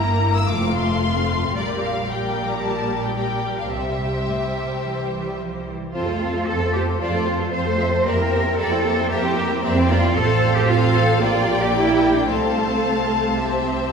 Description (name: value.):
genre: quick classical-period movement for string orchestra.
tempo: 112 BPM.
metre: 4/4.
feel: straight.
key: F major.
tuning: A4 = 440 Hz.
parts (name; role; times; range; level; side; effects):
clear studio violin section; melody; 0.0-13.9 s; Bb4 to E6; -27 LUFS; left 4 dB; none.
bright studio violin section; second line; 0.0-13.9 s; G3 to G5; -27 LUFS; left 2 dB; none.
rich studio viola section; accompaniment; 0.0-13.9 s; G3 to A4; -24 LUFS; equal; none.
clear symphonic cello section; bass; 0.0-13.9 s; F2 to C5; -23 LUFS; right 1 dB; none.
rich symphonic double bass section; bass; 0.0-13.9 s; F1 to F2; -25 LUFS; right 3 dB; none.
room: wet concert hall reverb, RT60 2.3 s.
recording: heard from further back in the room.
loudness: -18 LUFS.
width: side -6 dB against mid.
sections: 0.0-5.9 A section; 5.9-13.9 B section.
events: none.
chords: 0.5 F; 1.6 Gm/Bb; 3.7 C; 5.9 F; 8.1 C7/F; 10.2 F/A; 11.2 Gm7/Bb; 12.3 F/C; 13.4 C.